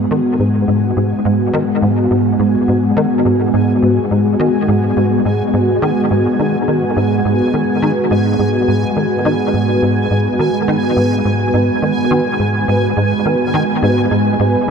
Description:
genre	ambient, sequencer-driven space music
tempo	105 BPM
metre	4/4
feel	straight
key	G# minor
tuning	A4 = 440 Hz
part	sweeping resonant pad	sustained chords	0.0-14.7 s	G#3 to F#5	-15 LUFS	equal	chorus
part	tight sequencer bass	riff	0.0-14.7 s	G#2 to D#3	-17 LUFS	equal	ensemble chorus, vintage 12-bit sampler grit, tape echo
part	bubbling stepped-filter texture	texture	0.0-14.7 s	G#5	-25 LUFS	right 2 dB	chorus, built-in reverb
room	wet huge ambient reverb, RT60 7.7 s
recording	dreamy mix soaked in reverb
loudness	-12 LUFS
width	side -6 dB against mid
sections	0.0-14.7 A section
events	fade-in on synth texture 0.0-14.7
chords	0.0 G#m7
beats	| 0.11 0.68 1.25 1.82 | 2.40 2.97 3.54 4.11 | 4.68 5.25 5.82 6.39 | 6.97 7.54 8.11 8.68 | 9.25 9.82 10.39 10.97 | 11.54 12.11 12.68 13.25 | 13.82 14.39

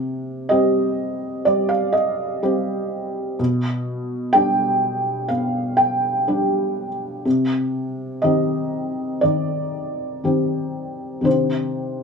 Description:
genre	neoclassical minimalist piano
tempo	62 BPM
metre	4/4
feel	rubato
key	C minor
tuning	A4 = 440 Hz
part	felt-muted upright piano	solo	0.0-12.0 s	B2 to G5	-19 LUFS	equal	none
room	moderate studio ambience, RT60 0.5 s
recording	band playing live in one room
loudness	-19 LUFS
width	side -5 dB against mid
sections	0.0-12.0 A section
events	none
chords	0.0 Cm; 3.4 G/B; 7.3 Cm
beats	0.49 1.45 2.42 | 3.39 4.34 5.30 6.27 | 7.25 8.24 9.24 10.23 | 11.25

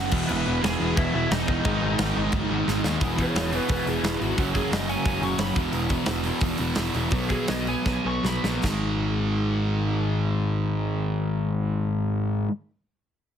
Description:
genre	punk rock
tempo	149-177 BPM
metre	4/4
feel	straight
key	G# minor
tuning	A4 = 442 Hz
part	lead guitar through a small cranked amp	melody	0.0-8.4 s	D#4 to C#6	-31 LUFS	right 1 dB	overdrive, ping-pong delay
part	distorted electric guitar	riff	0.0-5.6 s	G#2 to G#4	-32 LUFS	equal	distortion
part	sludgy distorted guitar	riff	0.0-12.5 s	E2 to B3	-29 LUFS	left 8 dB	overdrive
part	sludgy distorted guitar	riff	0.0-12.5 s	E2 to B3	-29 LUFS	right 8 dB	overdrive
part	modern bright picked electric bass	bass	0.0-12.4 s	E1 to D#2	-29 LUFS	equal	none
part	big rock drum kit	drums	0.1-8.7 s	crash cymbal, hi-hat, kick drum, snare drum, splash cymbal	-28 LUFS	equal	none
room	little or no reverb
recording	heavily compressed radio sound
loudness	-22 LUFS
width	side -9 dB against mid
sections	0.0-3.0 A section; 3.0-8.6 B section; 8.6-11.9 C section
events	drum fill 2.7-3.0, 7.9-8.6; lead electric guitar solo 3.0-8.6; slowing down 5.7-8.6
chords	0.1 E; 1.6 G#m; 3.0 E; 4.4 F#; 5.6 E5; 7.1 B5; 8.6 G#5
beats	| 0.29 0.63 0.97 1.31 | 1.65 1.99 2.33 2.67 | 3.01 3.35 3.69 4.03 | 4.37 4.71 5.05 5.39 | 5.73 6.08 6.42 6.77 | 7.12 7.49 7.86 8.24 | 8.64 9.04 9.44 9.84 | 10.25 10.65 11.05 11.45

